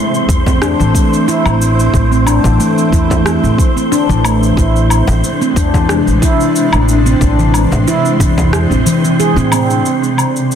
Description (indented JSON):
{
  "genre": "organic downtempo",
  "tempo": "91 BPM",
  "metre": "4/4",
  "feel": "swing 54% on 16ths",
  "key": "A harmonic minor",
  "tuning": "A4 = 440 Hz",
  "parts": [
    { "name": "granular cloud pad", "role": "sustained chords", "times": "0.0-10.6 s", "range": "B2 to A4", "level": "-18 LUFS", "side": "left 1 dB", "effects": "built-in reverb, sidechain pumping" },
    { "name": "wind-like tuned noise texture", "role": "texture", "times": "0.0-10.6 s", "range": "C5 to C6", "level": "-22 LUFS", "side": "right 1 dB", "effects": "built-in reverb" },
    { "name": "electronic shaker, rim click and woodblock", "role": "drums", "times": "0.1-10.6 s", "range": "none", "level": "-20 LUFS", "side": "left 1 dB", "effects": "soft clipping on snare" },
    { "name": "upright bass", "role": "bass", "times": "0.3-9.8 s", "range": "A1 to A2", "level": "-14 LUFS", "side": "equal", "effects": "sidechain pumping" },
    { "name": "electronic kick drum", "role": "drums", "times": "0.3-8.5 s", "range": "none", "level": "-14 LUFS", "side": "equal", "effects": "none" },
    { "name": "handpan", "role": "arpeggios", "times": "0.5-9.7 s", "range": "E3 to G#4", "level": "-14 LUFS", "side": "equal", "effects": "tape echo" },
    { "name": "frame drum", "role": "percussion", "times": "0.5-8.5 s", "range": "none", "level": "-24 LUFS", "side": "left 2 dB", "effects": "none" }
  ],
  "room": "light reverb, small room ambience",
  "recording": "dense, heavily limited modern master",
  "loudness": "-10 LUFS",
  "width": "side -8 dB against mid",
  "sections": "0.0-9.9 A section",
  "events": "kick drops out 8.5-9.9",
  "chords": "0.0 Am; 4.6 E7b13/A; 9.9 Amadd9"
}